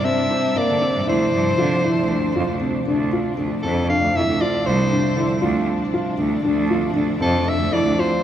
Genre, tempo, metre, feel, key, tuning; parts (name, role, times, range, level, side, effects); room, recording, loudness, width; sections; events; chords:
contemporary instrumental, chamber music in an uneven meter; 234 BPM (eighths); 7/8; straight; D minor; A4 = 440 Hz
bright soprano saxophone; melody; 0.0-8.2 s; A4 to F5; -23 LUFS; left 1 dB
rich studio string section; sustained chords; 0.0-8.2 s; C3 to D4; -26 LUFS; equal
felt-muted upright piano; arpeggios; 0.0-8.2 s; Bb3 to F4; -22 LUFS; left 1 dB
bright cello; bass; 0.7-8.1 s; C2 to D3; -23 LUFS; right 3 dB
wet cathedral reverb, RT60 5.6 s; recorded in a church or concert hall; -17 LUFS; side -10 dB against mid
0.0-2.9 A section; 2.9-8.2 B section
0.0 Csus2; 1.1 Dm7